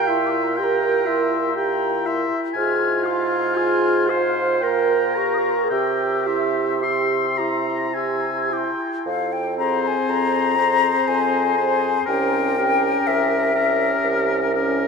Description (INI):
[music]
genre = classical, slow romantic movement for wind quintet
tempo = 53-62 BPM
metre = 3/4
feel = rubato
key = F minor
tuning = A4 = 443 Hz
[part]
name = mellow hollow wooden flute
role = melody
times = 0.0-14.5 s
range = E5 to F6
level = -23 LUFS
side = left 7 dB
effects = none
[part]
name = clear oboe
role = second line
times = 0.0-14.9 s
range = Bb4 to C6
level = -25 LUFS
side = left 3 dB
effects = none
[part]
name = clear clarinet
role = accompaniment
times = 0.0-14.9 s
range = F4 to G5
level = -24 LUFS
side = right 4 dB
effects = none
[part]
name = mellow French horn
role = accompaniment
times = 0.0-14.9 s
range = C4 to Bb4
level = -26 LUFS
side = left 1 dB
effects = none
[part]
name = warm bassoon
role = bass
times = 0.0-14.9 s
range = C2 to C3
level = -26 LUFS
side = right 6 dB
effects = none
[sound]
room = wet cathedral reverb, RT60 5.5 s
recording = in a vast, echoing space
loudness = -18 LUFS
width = side -5 dB against mid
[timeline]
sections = 0.0-9.1 A section; 9.1-14.9 B section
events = none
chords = 0.0 C7/Bb; 2.6 Fm/Ab; 4.6 Gdim/Bb; 5.7 C; 9.1 Fm; 12.1 C7b9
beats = 0.58 1.56 | 2.56 3.57 4.62 | 5.71 6.83 7.95 | 9.06 10.08 11.08 | 12.08 13.07 14.05